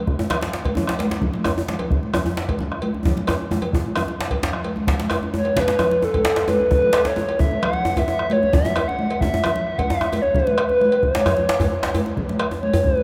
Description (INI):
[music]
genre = west african traditional, West African drum ensemble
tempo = 132 BPM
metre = 4/4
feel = straight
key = unclear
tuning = A4 = 440 Hz
[part]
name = bombo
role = percussion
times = 0.1-13.0 s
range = none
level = -28 LUFS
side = equal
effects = none
[part]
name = djembe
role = percussion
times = 0.1-13.0 s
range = none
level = -31 LUFS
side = equal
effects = none
[part]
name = congas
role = percussion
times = 0.2-13.0 s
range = none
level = -29 LUFS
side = equal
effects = none
[part]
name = djembe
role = percussion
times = 0.2-12.8 s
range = none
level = -28 LUFS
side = equal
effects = none
[part]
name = cowbell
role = percussion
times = 0.3-12.8 s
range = none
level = -34 LUFS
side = equal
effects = none
[part]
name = reedy FM lead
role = melody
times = 5.4-13.0 s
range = A4 to F#5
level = -22 LUFS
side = equal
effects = chorus
[sound]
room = wet cathedral reverb, RT60 5.2 s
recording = in a vast, echoing space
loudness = -21 LUFS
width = mono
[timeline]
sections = 0.0-4.9 A section; 4.9-13.0 B section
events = drum fill 3.1-4.9, 11.8-12.2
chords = none